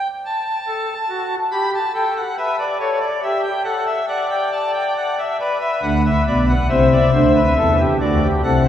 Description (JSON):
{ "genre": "classical, baroque-style 3-part fugue for pipe organ", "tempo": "46 BPM (dotted quarters)", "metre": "6/8", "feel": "straight", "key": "G major", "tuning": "A4 = 440 Hz", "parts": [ { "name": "pipe organ, cornet", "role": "solo", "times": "0.0-8.7 s", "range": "B1 to B5", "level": "-16 LUFS", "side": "left 1 dB", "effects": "none" } ], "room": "wet cathedral reverb, RT60 4.5 s", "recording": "heard from further back in the room", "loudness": "-16 LUFS", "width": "side -10 dB against mid", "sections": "0.0-8.7 A section", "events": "none", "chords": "0.3 F#m; 1.5 G; 2.8 A7; 4.1 D; 5.4 Bmadd11; 6.7 C; 8.0 D7" }